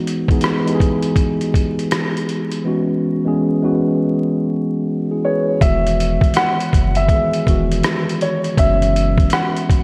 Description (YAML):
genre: lo-fi hip hop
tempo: 81 BPM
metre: 4/4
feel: swing 63% on 16ths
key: E major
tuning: A4 = 442 Hz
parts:
  - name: mellow tine electric piano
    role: accompaniment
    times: 0.0-9.8 s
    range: D#3 to C#5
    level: -21 LUFS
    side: equal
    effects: low-pass filter
  - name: lo-fi sampler-style drum kit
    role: drums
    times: 0.1-9.8 s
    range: hi-hat, kick drum, rim click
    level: -20 LUFS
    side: equal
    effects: none
  - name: dark upright piano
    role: melody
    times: 5.2-9.8 s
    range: C#5 to F#5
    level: -22 LUFS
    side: equal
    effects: lush chorus
  - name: soft dub sub bass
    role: bass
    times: 5.6-9.3 s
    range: E1 to F#1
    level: -21 LUFS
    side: equal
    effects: none
room: moderate lush hall reverb, RT60 2.8 s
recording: dreamy mix soaked in reverb, vinyl crackle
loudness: -17 LUFS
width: mono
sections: 0.0-5.6 A section; 5.6-9.8 B section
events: filter sweep on tine electric piano 0.0-5.6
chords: 0.0 Emaj7; 2.7 F#9sus4; 5.6 Emaj7; 8.6 F#9sus4